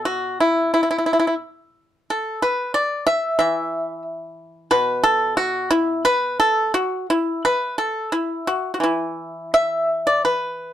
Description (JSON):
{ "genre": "chinese traditional, Chinese solo plucked strings", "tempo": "81-93 BPM", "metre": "4/4", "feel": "rubato", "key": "E shang mode", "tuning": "A4 = 440 Hz", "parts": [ { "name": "pipa", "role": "solo", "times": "0.0-10.7 s", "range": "B2 to E5", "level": "-18 LUFS", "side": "equal", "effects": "none" } ], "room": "light reverb", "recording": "dark, warm production", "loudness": "-18 LUFS", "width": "side -11 dB against mid", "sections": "0.0-10.3 A section", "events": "none", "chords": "none" }